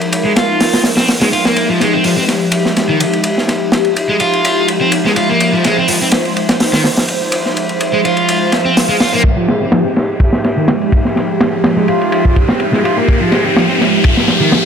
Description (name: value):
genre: breakbeat, breaks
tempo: 125 BPM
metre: 4/4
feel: swing 53% on 16ths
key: F minor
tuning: A4 = 440 Hz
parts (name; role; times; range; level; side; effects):
- phased analog pad; sustained chords; 0.0-14.7 s; F3 to C5; -17 LUFS; equal; phaser, chorus, sidechain pumping
- crunchy breakbeat drum kit; drums; 0.0-14.6 s; hi-hat, kick drum, ride cymbal, snare drum; -14 LUFS; equal; high-pass filter on kick, low-pass filter on kick, high-pass filter on cymbals, low-pass filter on cymbals, high-pass filter on hats, low-pass filter on hats, high-pass filter on snare, low-pass filter on snare, high-pass filter on room, low-pass filter on room
- crunchy overdriven guitar; riff; 0.2-14.5 s; Eb3 to F4; -16 LUFS; equal; low-pass filter, dub echo
- swell and riser; sound effects; 8.4-14.7 s; none; -20 LUFS; left 2 dB; none
room: light reverb, studio reverb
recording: none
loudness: -11 LUFS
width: side -7 dB against mid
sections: 0.0-9.2 A section; 9.2-14.7 B section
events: filter sweep on analog synth pad 0.0-9.2; swell 8.4-9.2; build-up 9.2-14.7; riser 9.2-14.7; filter sweep on drum 9.2-14.7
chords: 0.0 Fm9